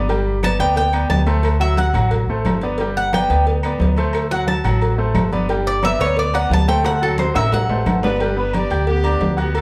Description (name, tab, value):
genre	latin, salsa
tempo	178 BPM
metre	4/4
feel	straight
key	G major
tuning	A4 = 440 Hz
part	bright grand piano	accompaniment	0.0-9.6 s	F#3 to G6	-26 LUFS	equal	none
part	upright bass	bass	0.0-9.6 s	G1 to D2	-22 LUFS	equal	none
part	agogo bells and timbales	percussion	0.1-9.6 s	none	-30 LUFS	equal	none
part	congas	percussion	0.1-9.6 s	none	-28 LUFS	equal	none
part	cowbell and bongos	percussion	0.1-9.6 s	none	-31 LUFS	equal	none
part	Cuban tres	melody	0.4-8.1 s	A4 to A5	-22 LUFS	equal	none
part	claves	percussion	0.4-8.0 s	none	-40 LUFS	equal	none
part	warm horn section	melody	8.0-9.6 s	B3 to D5	-25 LUFS	equal	none
room	moderate large studio reverb, RT60 1.1 s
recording	band playing live in one room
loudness	-18 LUFS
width	mono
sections	0.0-8.2 A section; 8.2-9.6 B section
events	Cuban tres solo 0.0-8.2; drum fill 6.8-8.2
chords	0.1 G; 1.4 D7; 2.8 G; 4.1 D7; 5.5 G; 6.8 D7; 8.2 G